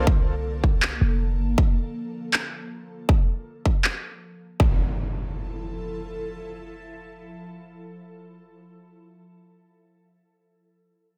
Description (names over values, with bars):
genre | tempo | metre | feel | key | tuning
future bass | 159 BPM | 4/4 | half-time | F major | A4 = 444 Hz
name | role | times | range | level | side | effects
ethereal airy pad | sustained chords | 0.0-8.4 s | D3 to A4 | -38 LUFS | equal | ensemble chorus, built-in reverb, phaser, sidechain pumping
warm 808-style bass | bass | 0.0-1.6 s | F1 to C2 | -27 LUFS | equal | sidechain pumping
impact | sound effects | 0.0-0.1, 4.6-8.8 s | none | -33 LUFS | equal | none
electronic kick drum | drums | 0.1-4.7 s | none | -22 LUFS | equal | none
electronic handclaps | drums | 0.8-3.9 s | none | -26 LUFS | equal | none
room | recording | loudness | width
digital ambience | none | -25 LUFS | mono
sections
0.0-4.6 A section; 4.6-7.6 B section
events
none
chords
0.0 Bbmaj7; 1.4 Gm9 (rootless); 4.6 Fmaj7